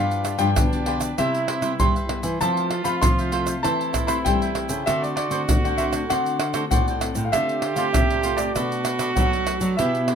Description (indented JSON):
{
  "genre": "samba and choro",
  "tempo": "98 BPM",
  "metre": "4/4",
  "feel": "straight",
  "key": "unclear",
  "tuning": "A4 = 443 Hz",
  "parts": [
    { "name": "warm concert grand piano", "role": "melody", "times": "0.0-10.2 s", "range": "D5 to C6", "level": "-26 LUFS", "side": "left 2 dB", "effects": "none" },
    { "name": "brilliant trombone", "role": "second line", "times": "0.0-10.2 s", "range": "D4 to G4", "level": "-28 LUFS", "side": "right 5 dB", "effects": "none" },
    { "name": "cavaquinho", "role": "accompaniment", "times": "0.0-10.2 s", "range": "D4 to E5", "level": "-30 LUFS", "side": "right 5 dB", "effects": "none" },
    { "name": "nylon-string guitar", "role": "accompaniment", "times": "0.0-10.2 s", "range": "G2 to G4", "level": "-31 LUFS", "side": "left 5 dB", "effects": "none" },
    { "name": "nylon-string guitar", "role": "bass", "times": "0.0-10.2 s", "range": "G2 to G3", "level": "-27 LUFS", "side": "equal", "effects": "none" },
    { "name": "egg shaker, pandeiro, tamborim and surdo", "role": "percussion", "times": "0.1-10.2 s", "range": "none", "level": "-24 LUFS", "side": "right 1 dB", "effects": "none" }
  ],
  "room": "moderate small room ambience, RT60 0.5 s",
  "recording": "minimal, uncompressed stereo recording",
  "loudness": "-20 LUFS",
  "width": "side -7 dB against mid",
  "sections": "0.0-10.2 A section",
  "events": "none",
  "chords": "0.0 G7; 1.2 Cmaj7; 2.4 Fmaj7; 3.6 C6/E; 4.9 D7; 7.3 Dm7; 8.6 Bm7",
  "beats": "0.57 1.18 1.80 | 2.41 3.03 3.64 4.26 | 4.87 5.49 6.10 6.71 | 7.33 7.94 8.56 9.17 | 9.79"
}